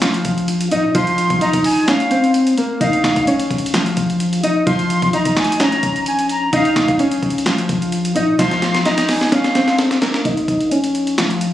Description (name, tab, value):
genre	hip hop, trap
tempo	129 BPM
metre	4/4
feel	half-time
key	Bb minor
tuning	A4 = 443 Hz
part	mellow electric guitar	melody	0.0-11.5 s	F3 to Eb5	-16 LUFS	left 1 dB	low-pass filter, tape echo
part	boom bap sampler-style drum kit	drums	0.0-11.5 s	handclaps, hi-hat, kick drum, snare drum	-21 LUFS	equal	none
part	long sustained 808-style bass	bass	0.3-11.5 s	Bb1 to Bb2	-29 LUFS	equal	none
part	jazz flute	second line	1.0-9.8 s	F5 to C6	-21 LUFS	equal	tape echo
room	light reverb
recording	recorded on a phone in the room, studio reverb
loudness	-14 LUFS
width	side -12 dB against mid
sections	0.0-10.2 A section; 10.2-11.5 B section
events	kick muted 1.9-2.8; drum fill 8.4-10.2; filter sweep on clean electric guitar 10.2-11.5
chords	0.0 Bbm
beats	0.02 0.48 | 0.95 1.41 1.88 2.34 | 2.81 3.27 3.74 4.20 | 4.67 5.13 5.60 6.06 | 6.53 7.00 7.46 7.92 | 8.39 8.86 9.32 9.79 | 10.25 10.72 11.18